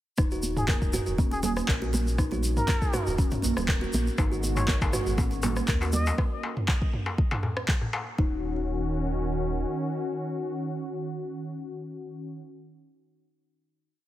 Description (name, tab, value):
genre	afro house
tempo	120 BPM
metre	4/4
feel	swing 53% on 16ths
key	Eb minor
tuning	A4 = 440 Hz
part	kalimba	arpeggios	0.2-8.4 s	Bb3 to Bb4	-33 LUFS	equal	sidechain pumping, ping-pong delay
part	round analog bass	bass	0.2-9.6 s	Eb1 to Eb2	-30 LUFS	equal	sidechain pumping
part	deep house drum kit	drums	0.2-7.8 s	handclaps, rim click, toms	-32 LUFS	equal	none
part	electronic kick drum	drums	0.2-8.3 s	none	-26 LUFS	equal	none
part	congas	percussion	0.2-6.0 s	none	-34 LUFS	right 3 dB	none
part	tube shaker	percussion	0.2-6.2 s	none	-38 LUFS	equal	none
part	trumpet with plunger mute	melody	0.6-6.2 s	Ab4 to Eb5	-36 LUFS	equal	ping-pong delay
part	warm analog pad	sustained chords	4.2-12.4 s	Cb3 to Gb4	-32 LUFS	equal	chorus, sidechain pumping
part	darbuka	percussion	4.2-8.0 s	none	-33 LUFS	left 2 dB	none
room	light reverb, small room ambience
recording	heavily compressed radio sound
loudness	-25 LUFS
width	side -14 dB against mid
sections	0.2-8.2 drop; 8.2-12.2 final chord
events	drop 0.2-8.2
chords	0.2 Ebm; 4.2 Abm7; 8.2 Ebm7